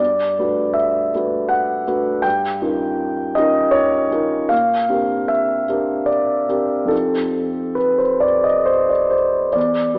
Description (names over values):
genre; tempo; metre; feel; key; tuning
classical, impressionist solo piano; 65-83 BPM; 3/4; rubato; unclear; A4 = 440 Hz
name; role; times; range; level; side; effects
warm concert grand piano; solo; 0.0-10.0 s; E2 to G5; -15 LUFS; equal; none
room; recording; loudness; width
moderate scoring stage reverb, RT60 1.7 s; worn, warbling old tape, cassette tape, warbly pitch drift, AM radio sound; -15 LUFS; side -36 dB against mid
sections
0.0-10.0 A section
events
none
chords
0.0 Gmaj9; 2.2 Eb9/G; 4.5 Bb69; 6.9 F9